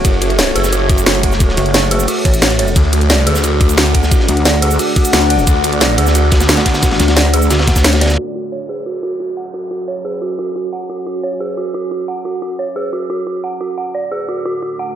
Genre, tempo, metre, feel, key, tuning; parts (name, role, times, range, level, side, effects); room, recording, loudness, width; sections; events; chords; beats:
dark technical drum and bass; 177 BPM; 4/4; straight; F# minor; A4 = 438 Hz
deep dark ambient pad; sustained chords; 0.0-15.0 s; A3 to G#5; -20 LUFS; left 1 dB; chorus, built-in reverb, sidechain pumping
dark detuned synth bell; arpeggios; 0.0-14.8 s; F#4 to F#5; -20 LUFS; right 2 dB; chorus, sidechain pumping, dub echo
phased detuned saw bass; bass; 0.0-7.0 s; F#1 to D2; -15 LUFS; equal; phaser, tube saturation
pulsing pluck wobble bass; bass; 0.0-8.2 s; F#1 to D2; -15 LUFS; equal; chorus
drum and bass drum kit; drums; 0.0-8.3 s; cabasa, crash cymbal, hi-hat, ride cymbal, snare drum; -16 LUFS; equal; low-pass filter on hats, low-pass filter on perc, low-pass filter on snare, low-pass filter on cymbals
electronic kick drum; drums; 0.0-7.8 s; -13 LUFS; equal
crunchy breakbeat drum kit; drums; 0.1-8.2 s; hi-hat, ride cymbal, snare drum; -21 LUFS; equal; high-pass filter on cymbals, high-pass filter on hats, high-pass filter on snare, high-pass filter on room
downlifter; sound effects; 8.3-10.9 s; -40 LUFS; equal
light reverb, digital ambience; low-pass filter; -12 LUFS; side -10 dB against mid
0.0-8.2 A section; 8.2-15.0 B section
drop 0.0-8.2; kick drops out 7.8-8.2; filter sweep 8.2-15.0
0.0 F#m; 2.8 D; 8.2 F#5; 13.6 D
| 0.05 0.39 0.73 1.06 | 1.40 1.74 2.08 2.42 | 2.76 3.10 3.44 3.78 | 4.12 4.46 4.79 5.13 | 5.47 5.81 6.15 6.49 | 6.83 7.17 7.50 7.84 | 8.18 8.52 8.86 9.20 | 9.54 9.88 10.22 10.56 | 10.89 11.23 11.57 11.91 | 12.25 12.59 12.93 13.27 | 13.61 13.95 14.29 14.62